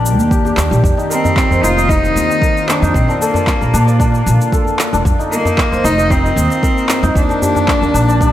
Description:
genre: organic downtempo.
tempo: 114 BPM.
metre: 4/4.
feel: straight.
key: unclear.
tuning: A4 = 439 Hz.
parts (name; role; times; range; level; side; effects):
bowed-like drone; sustained chords; 0.0-8.3 s; D3 to G4; -23 LUFS; left 1 dB; built-in reverb, sidechain pumping.
santur; arpeggios; 0.0-8.3 s; D4 to Eb5; -18 LUFS; left 1 dB; tape echo.
upright bass; bass; 0.0-8.3 s; F1 to Bb2; -15 LUFS; equal; none.
electronic shaker and handclaps; drums; 0.1-8.3 s; none; -22 LUFS; equal; overdrive.
electronic kick drum; drums; 0.3-8.3 s; none; -16 LUFS; equal; overdrive.
djembe; percussion; 0.4-7.9 s; none; -24 LUFS; left 1 dB; none.
rich cello; melody; 1.1-8.3 s; Bb3 to F4; -17 LUFS; equal; tape echo.
room: light reverb, small room reverb.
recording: none.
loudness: -11 LUFS.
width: side -12 dB against mid.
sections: 0.0-8.3 A section.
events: none.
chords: 0.0 Ebmaj7; 0.8 F7sus4; 2.9 Bbmaj7; 5.1 F7sus4; 7.2 Ebmaj7.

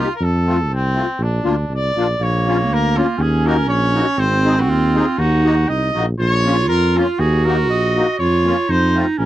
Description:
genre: alpine folk, alpine dance band.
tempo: 120 BPM.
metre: 2/4.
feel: straight.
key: Bb minor.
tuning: A4 = 440 Hz.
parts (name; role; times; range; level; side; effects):
bright trumpet; melody; 0.0-9.3 s; C4 to Eb5; -21 LUFS; equal; none.
musette accordion; accompaniment; 0.0-9.1 s; A3 to Ab4; -20 LUFS; left 3 dB; none.
mellow tuba; bass; 0.0-9.3 s; Ab1 to F2; -18 LUFS; equal; none.
bright clarinet; second line; 2.2-9.3 s; Bb3 to Gb4; -19 LUFS; right 4 dB; none.
room: little or no reverb.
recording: dry, close 1970s-style studio recording.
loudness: -14 LUFS.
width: side -13 dB against mid.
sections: 0.0-2.2 A section; 2.2-9.3 B section.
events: none.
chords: 0.2 F; 1.2 Bbadd9; 2.2 Bbm; 3.2 Ebm; 4.2 Ab; 5.2 Ebm; 6.2 Bbm; 7.2 Ebm; 8.2 Bbm/F; 8.7 F.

